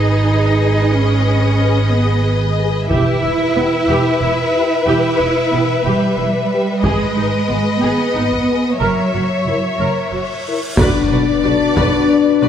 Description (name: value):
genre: cinematic, epic orchestral film score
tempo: 61 BPM (dotted quarters)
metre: 6/8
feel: straight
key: unclear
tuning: A4 = 440 Hz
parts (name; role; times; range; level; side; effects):
- warm studio violin section; melody; 0.0-12.5 s; D5 to E5; -24 LUFS; left 4 dB; none
- warm symphonic violin section; second line; 0.0-12.5 s; B4 to D5; -22 LUFS; left 2 dB; none
- warm symphonic viola section; accompaniment; 0.0-12.5 s; B3 to B4; -23 LUFS; right 2 dB; none
- rich symphonic cello section; bass; 0.0-12.5 s; B2 to E4; -19 LUFS; right 2 dB; none
- warm symphonic double bass section; bass; 0.0-12.5 s; E1 to B1; -19 LUFS; right 2 dB; none
- mellow French horn section; sustained chords; 0.6-12.5 s; D4 to B4; -19 LUFS; left 7 dB; none
- solo taiko drums; drums; 2.9-12.4 s; none; -19 LUFS; equal; none
- cymbal swell and impact; sound effects; 10.2-12.5 s; none; -27 LUFS; equal; none
- dark chamber string section; sustained chords; 10.8-12.5 s; B3 to B4; -25 LUFS; right 1 dB; none
- warm tuba; bass; 10.8-12.5 s; B1; -25 LUFS; right 3 dB; none
room: wet scoring stage reverb, RT60 1.7 s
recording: none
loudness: -13 LUFS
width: side -9 dB against mid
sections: 0.0-10.8 A section; 10.8-12.5 B section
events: cymbal swell 10.2-10.8; impact 10.8-12.5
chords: 0.0 G#m; 2.9 Em; 6.8 G#m; 8.8 F#7; 10.8 Bm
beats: | 0.93 1.92 | 2.90 3.89 | 4.87 5.86 | 6.84 7.83 | 8.81 9.80 | 10.78 11.77